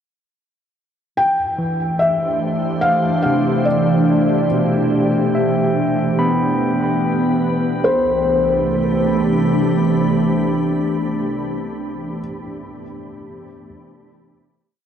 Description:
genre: ambient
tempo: 72 BPM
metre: 4/4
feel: straight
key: C major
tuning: A4 = 441 Hz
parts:
  - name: felt-muted upright piano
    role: melody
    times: 1.2-12.2 s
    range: C5 to G5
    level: -20 LUFS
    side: left 2 dB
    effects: diffuse ambient delay
  - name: glassy FM pad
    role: sustained chords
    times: 1.2-11.9 s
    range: C2 to B5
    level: -18 LUFS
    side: right 1 dB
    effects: ensemble chorus, built-in reverb
  - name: organ-like drone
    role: drone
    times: 2.8-12.0 s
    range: C3 to E3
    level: -30 LUFS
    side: equal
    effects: ensemble chorus, built-in reverb
  - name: glass harmonica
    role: texture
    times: 1.2-7.9 s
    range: G5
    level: -32 LUFS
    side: left 2 dB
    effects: none
  - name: barky tine electric piano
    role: arpeggios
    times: 1.6-13.7 s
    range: B2 to B5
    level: -25 LUFS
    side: equal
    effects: diffuse ambient delay
room: wet huge ambient reverb, RT60 8.4 s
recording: dark, warm production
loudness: -15 LUFS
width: side -8 dB against mid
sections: 1.2-7.8 A section; 7.8-11.2 final chord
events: fade-in on synth drone 1.2-7.8; fade-in on glass harmonica 1.2-7.8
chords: 1.2 C6; 2.8 D5; 4.5 Am7; 6.2 Em7/B; 7.8 C6

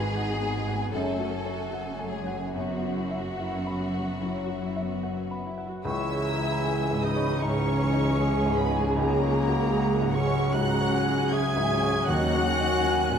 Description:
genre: cinematic, emotional film score for orchestra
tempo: 71-79 BPM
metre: 4/4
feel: rubato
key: unclear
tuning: A4 = 440 Hz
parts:
  - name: rich studio violin section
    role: melody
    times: 0.0-13.2 s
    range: E5 to G#6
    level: -35 LUFS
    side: left 2 dB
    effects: none
  - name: rich studio violin section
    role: second line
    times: 0.0-13.2 s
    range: F#4 to G#5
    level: -34 LUFS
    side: left 2 dB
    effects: none
  - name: warm baby grand piano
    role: accompaniment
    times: 0.0-13.2 s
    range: C#2 to B5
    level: -32 LUFS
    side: left 1 dB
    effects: none
  - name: warm studio viola section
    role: accompaniment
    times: 0.0-13.2 s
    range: F#3 to G#4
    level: -33 LUFS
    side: right 3 dB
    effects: none
  - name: concert harp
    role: arpeggios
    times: 0.0-13.2 s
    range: F#2 to G#5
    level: -33 LUFS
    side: left 6 dB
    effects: none
  - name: rich studio cello section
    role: bass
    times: 0.0-13.2 s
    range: C#2 to G#2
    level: -33 LUFS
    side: right 2 dB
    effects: none
  - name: warm studio double bass section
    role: bass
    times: 0.0-13.2 s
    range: F#1 to D#2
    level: -33 LUFS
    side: right 3 dB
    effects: none
  - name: mellow clarinet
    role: second line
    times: 5.9-13.2 s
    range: G#3 to G#4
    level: -32 LUFS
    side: left 1 dB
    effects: none
  - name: mellow flute section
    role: second line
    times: 5.9-13.2 s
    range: D#5 to C#6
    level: -33 LUFS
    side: right 1 dB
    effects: none
  - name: mellow French horn section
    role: sustained chords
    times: 5.9-13.2 s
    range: E3 to G#4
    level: -33 LUFS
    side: equal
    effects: none
room: moderate scoring stage reverb, RT60 2.0 s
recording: none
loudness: -24 LUFS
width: side -7 dB against mid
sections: 0.0-5.9 A section; 5.9-13.2 B section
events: none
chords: 0.0 G#m7; 0.9 F#madd9; 2.5 Bsus4/F#; 5.9 C#madd9; 9.0 F#add9/C#; 12.1 D#m7

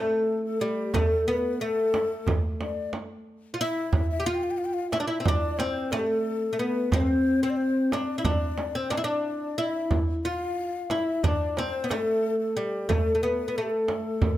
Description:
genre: Turkish makam ensemble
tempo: 181 BPM (eighths)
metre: 9/8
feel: straight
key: unclear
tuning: A4 = 443 Hz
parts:
  - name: oud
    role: melody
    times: 0.0-14.4 s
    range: G3 to G4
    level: -26 LUFS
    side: equal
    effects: none
  - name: breathy mellow ney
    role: second line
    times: 0.0-14.4 s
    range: G4 to G5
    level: -32 LUFS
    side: left 6 dB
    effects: none
  - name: darbuka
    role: percussion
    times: 0.9-14.4 s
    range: none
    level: -29 LUFS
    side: right 1 dB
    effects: none
  - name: frame drum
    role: percussion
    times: 0.9-14.4 s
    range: none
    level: -29 LUFS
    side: right 3 dB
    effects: none
room: light reverb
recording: close, detailed microphones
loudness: -24 LUFS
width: side -14 dB against mid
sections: 0.0-14.4 A section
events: none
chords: none

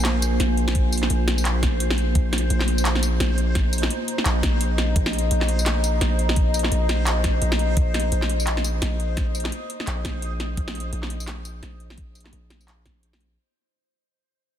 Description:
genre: half-time drum and bass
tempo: 171 BPM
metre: 4/4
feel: swing 59% on 16ths, half-time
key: unclear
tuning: A4 = 441 Hz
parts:
  - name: deep dark ambient pad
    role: sustained chords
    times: 0.0-13.4 s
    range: Bb3 to Eb6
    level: -29 LUFS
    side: left 1 dB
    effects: chorus, built-in reverb, sidechain pumping
  - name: long sustained 808-style bass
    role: bass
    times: 0.0-13.4 s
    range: Bb1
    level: -23 LUFS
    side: equal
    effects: none
  - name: drum and bass drum kit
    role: drums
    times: 0.0-13.3 s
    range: handclaps, hi-hat, snare drum, tambourine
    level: -26 LUFS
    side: equal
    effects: none
  - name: backwards swelling texture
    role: texture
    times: 0.0-13.4 s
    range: C5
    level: -34 LUFS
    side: right 2 dB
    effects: built-in reverb
  - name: electronic kick drum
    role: drums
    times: 0.8-12.9 s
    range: none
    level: -23 LUFS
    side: equal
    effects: none
room: light reverb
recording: dense, heavily limited modern master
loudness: -20 LUFS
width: side -10 dB against mid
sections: 0.0-13.4 A section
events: drop 0.0-13.4; fade-out 7.8-13.4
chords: 0.0 Bb5

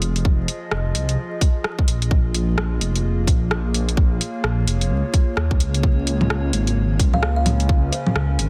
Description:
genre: future garage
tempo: 129 BPM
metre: 4/4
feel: swing 60% on 16ths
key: unclear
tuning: A4 = 440 Hz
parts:
  - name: warbly tape-like pad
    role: sustained chords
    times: 0.0-8.5 s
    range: Db3 to Eb5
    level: -31 LUFS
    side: equal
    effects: chorus, built-in reverb, phaser, sidechain pumping
  - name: swelling detuned saw bass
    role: bass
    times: 0.0-8.5 s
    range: F1 to Eb2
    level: -23 LUFS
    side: equal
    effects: sidechain pumping
  - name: garage drum kit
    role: drums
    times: 0.0-8.5 s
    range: bongos, hi-hat, rim click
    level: -27 LUFS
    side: equal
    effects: soft clipping on snare
  - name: electronic kick drum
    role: drums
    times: 0.2-7.8 s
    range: none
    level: -20 LUFS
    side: equal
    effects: none
  - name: buzzing kalimba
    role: melody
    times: 7.1-8.2 s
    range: C5 to F5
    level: -30 LUFS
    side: equal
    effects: dub echo
room: digital ambience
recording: dense, heavily limited modern master, vinyl crackle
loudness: -20 LUFS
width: mono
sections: 0.0-8.5 A section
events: none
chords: 0.0 Fm7; 2.1 Bbm7; 5.8 Db6

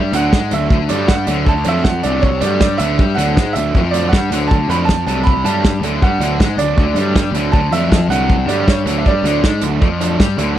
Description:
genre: indie rock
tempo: 158 BPM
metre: 4/4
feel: straight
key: D major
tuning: A4 = 440 Hz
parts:
  - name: bright upright piano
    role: melody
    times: 0.0-10.4 s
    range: C#5 to B5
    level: -20 LUFS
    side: right 5 dB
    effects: tape echo
  - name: fuzz guitar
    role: riff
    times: 0.0-10.6 s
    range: C3 to G#3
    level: -22 LUFS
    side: left 10 dB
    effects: distortion
  - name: fuzz picked electric bass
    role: bass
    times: 0.0-10.6 s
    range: C2 to G#2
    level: -18 LUFS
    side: left 1 dB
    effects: overdrive
  - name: biting overdriven guitar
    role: riff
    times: 0.1-10.6 s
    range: F#3 to D4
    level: -22 LUFS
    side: right 8 dB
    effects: analog chorus, tape echo
  - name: loose indie drum kit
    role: drums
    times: 0.1-10.5 s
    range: hi-hat, kick drum, snare drum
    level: -15 LUFS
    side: equal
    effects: none
room: little or no reverb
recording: dry, close 1970s-style studio recording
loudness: -13 LUFS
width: side -12 dB against mid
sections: 0.0-10.6 A section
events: none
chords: 0.0 D

